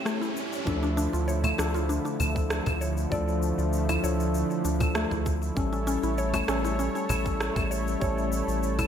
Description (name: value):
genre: organic downtempo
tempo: 98 BPM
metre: 4/4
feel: straight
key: D harmonic minor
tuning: A4 = 438 Hz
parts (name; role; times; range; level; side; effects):
- tine electric piano; accompaniment; 0.0-8.9 s; F3 to A4; -32 LUFS; left 3 dB; medium stereo tremolo, sidechain pumping, ping-pong delay
- warm analog pad; sustained chords; 0.0-8.9 s; D3 to C#5; -32 LUFS; right 1 dB; chorus, tremolo, sidechain pumping
- mallet-like synth pluck; arpeggios; 0.0-8.9 s; A3 to D5; -33 LUFS; equal; chorus, ping-pong delay
- riser; sound effects; 0.0-0.7 s; none; -36 LUFS; right 1 dB; none
- electronic rim click, shaker and claves; drums; 0.1-8.9 s; none; -34 LUFS; equal; overdrive, gated reverb
- round analog bass; bass; 0.7-8.9 s; A1 to D2; -30 LUFS; equal; none
- electronic kick drum; drums; 0.7-8.1 s; none; -32 LUFS; right 1 dB; overdrive
- cajon; percussion; 1.4-8.9 s; none; -33 LUFS; left 1 dB; none
room: moderate lush hall reverb, RT60 2.0 s, digital ambience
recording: bright 1980s-style digital production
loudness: -25 LUFS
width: side -8 dB against mid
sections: 0.7-8.9 A section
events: riser 0.0-0.7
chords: 0.0 A7; 0.7 Dm; 5.6 A7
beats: 0.06 | 0.67 1.28 1.89 2.51 | 3.12 3.73 4.34 4.96 | 5.57 6.18 6.79 7.40 | 8.02 8.63